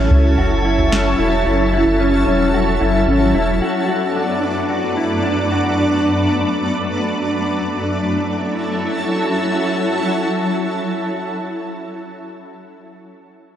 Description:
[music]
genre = dream pop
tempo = 111 BPM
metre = 4/4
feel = straight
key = F# minor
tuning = A4 = 441 Hz
[part]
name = shimmering ambient pad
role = sustained chords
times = 0.0-12.1 s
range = F#2 to A4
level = -18 LUFS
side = equal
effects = chorus, built-in reverb
[part]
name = mellow electric guitar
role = arpeggios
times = 0.0-5.8 s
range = C#4 to F#4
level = -19 LUFS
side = left 1 dB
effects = analog chorus, analog delay
[part]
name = saturated sub bass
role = bass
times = 0.0-3.6 s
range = E1 to C#2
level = -19 LUFS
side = equal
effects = none
[part]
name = soft vintage rhythm box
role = drums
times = 0.1-1.0 s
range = kick drum, snare drum, toms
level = -20 LUFS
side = equal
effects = none
[sound]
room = wet lush hall reverb, RT60 2.5 s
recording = dreamy mix soaked in reverb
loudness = -15 LUFS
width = side -10 dB against mid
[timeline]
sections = 0.0-7.9 A section; 7.9-12.3 B section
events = none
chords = 0.0 F#m7; 3.6 Bm7/F#; 7.9 F#m7

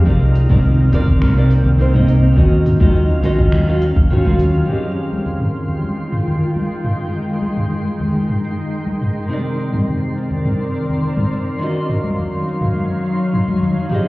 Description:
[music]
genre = sunset chillout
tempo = 104 BPM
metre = 4/4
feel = straight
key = F minor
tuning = A4 = 438 Hz
[part]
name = nylon-string guitar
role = accompaniment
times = 0.0-14.1 s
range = C3 to F5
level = -21 LUFS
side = equal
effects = auto-pan, low-pass filter, digital delay
[part]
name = shimmering ambient pad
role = sustained chords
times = 0.0-14.1 s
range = Eb3 to G5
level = -22 LUFS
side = equal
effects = chorus, built-in reverb
[part]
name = twinkling granular texture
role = texture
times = 0.0-14.1 s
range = C6 to F6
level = -34 LUFS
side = equal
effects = built-in reverb
[part]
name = fingered electric bass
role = bass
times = 0.1-4.6 s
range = G1 to Eb2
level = -14 LUFS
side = equal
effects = tube saturation
[part]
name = deep house drum kit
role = drums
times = 0.1-14.0 s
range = cabasa, finger snaps, hi-hat, toms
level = -22 LUFS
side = equal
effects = low-pass filter on toms, studio reverb, low-pass filter on perc, low-pass filter on hats, low-pass filter on snare
[part]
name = electronic kick drum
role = drums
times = 0.1-4.4 s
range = none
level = -16 LUFS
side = equal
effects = studio reverb
[part]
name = congas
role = percussion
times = 0.5-13.7 s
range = none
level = -24 LUFS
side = left 1 dB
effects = none
[sound]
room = light reverb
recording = heard muffled through a wall, stone room reverb, EQ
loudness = -14 LUFS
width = side -20 dB against mid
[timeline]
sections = 0.0-4.7 A section; 4.7-14.1 B section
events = none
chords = 0.1 Cm9; 2.4 Ebm9; 4.7 Fm9; 9.3 Cm9; 11.6 Ebm9

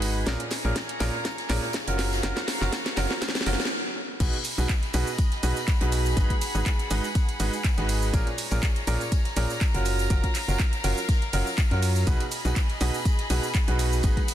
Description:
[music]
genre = piano house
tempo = 122 BPM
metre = 4/4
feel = swing 54% on 16ths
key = unclear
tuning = A4 = 440 Hz
[part]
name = warm studio violin section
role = sustained chords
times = 0.0-14.3 s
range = F#4 to B5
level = -35 LUFS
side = left 1 dB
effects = sidechain pumping
[part]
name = bright baby grand piano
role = riff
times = 0.0-14.2 s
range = A#2 to B4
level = -30 LUFS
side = right 2 dB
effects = sidechain pumping, low-pass filter, tape echo
[part]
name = organ-like FM bass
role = bass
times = 0.0-14.1 s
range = F#1 to F#2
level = -26 LUFS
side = equal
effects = tube saturation, sidechain pumping
[part]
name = house drum kit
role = drums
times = 0.0-14.3 s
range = cabasa, crash cymbal, handclaps, hi-hat, ride cymbal, snare drum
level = -31 LUFS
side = right 1 dB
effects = studio reverb
[part]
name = swinging big-band drum kit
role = drums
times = 0.0-14.3 s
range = hi-hat, snare drum, tambourine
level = -41 LUFS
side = equal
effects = none
[part]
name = electronic kick drum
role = drums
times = 0.3-14.3 s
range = none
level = -24 LUFS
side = equal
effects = high-pass filter on kick, studio reverb
[part]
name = tambourine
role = percussion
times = 4.2-14.3 s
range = none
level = -43 LUFS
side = left 4 dB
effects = none
[sound]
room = light reverb, small room ambience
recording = dense, heavily limited modern master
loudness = -23 LUFS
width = side -12 dB against mid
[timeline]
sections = 0.0-4.2 A section; 4.2-14.3 B section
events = build-up 0.0-4.2; drum fill 0.0-3.7; stop 3.7-4.2; drop 4.2-14.3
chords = 0.3 A#m7; 2.0 F#maj7; 4.2 B6; 6.2 G#m7; 8.1 A#m7; 9.9 F#maj7; 12.1 B6

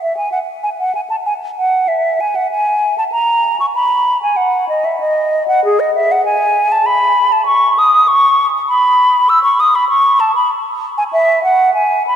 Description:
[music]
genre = classical, baroque-style fantasia for unaccompanied flute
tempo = 97 BPM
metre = 3/4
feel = rubato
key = unclear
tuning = A4 = 441 Hz
[part]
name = mellow hollow silver concert flute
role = solo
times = 0.0-12.2 s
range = G#4 to E6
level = -11 LUFS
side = equal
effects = none
[sound]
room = wet cathedral reverb, RT60 5.1 s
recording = minimal, uncompressed stereo recording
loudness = -11 LUFS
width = side -9 dB against mid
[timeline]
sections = 0.0-12.2 A section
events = none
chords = none

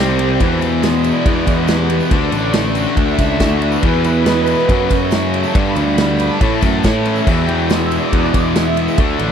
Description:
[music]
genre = classic rock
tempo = 140 BPM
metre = 4/4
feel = straight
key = unclear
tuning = A4 = 439 Hz
[part]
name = string machine, full ensemble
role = sustained chords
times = 0.0-9.0 s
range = G4 to B5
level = -22 LUFS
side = right 2 dB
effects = phaser, ensemble chorus
[part]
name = cranked stack guitar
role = riff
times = 0.0-9.3 s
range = F#2 to F#4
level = -21 LUFS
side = right 17 dB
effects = overdrive
[part]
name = tight distorted guitar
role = riff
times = 0.0-9.3 s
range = E2 to D4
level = -19 LUFS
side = left 12 dB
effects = distortion
[part]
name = fuzz picked electric bass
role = bass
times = 0.0-9.3 s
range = A1 to A2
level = -19 LUFS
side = equal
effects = overdrive
[part]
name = big rock drum kit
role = drums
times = 0.2-9.3 s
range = crash cymbal, kick drum, ride cymbal, snare drum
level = -18 LUFS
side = equal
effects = none
[part]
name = tambourine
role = percussion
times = 0.4-9.1 s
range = none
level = -42 LUFS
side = right 21 dB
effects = none
[sound]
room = light reverb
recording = dry, close 1970s-style studio recording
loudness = -13 LUFS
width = side -8 dB against mid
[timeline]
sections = 0.4-9.3 A section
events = string machine solo 0.4-9.3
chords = 0.4 E; 2.1 D; 3.8 E; 4.7 F#m; 5.5 G; 6.4 A; 7.3 E

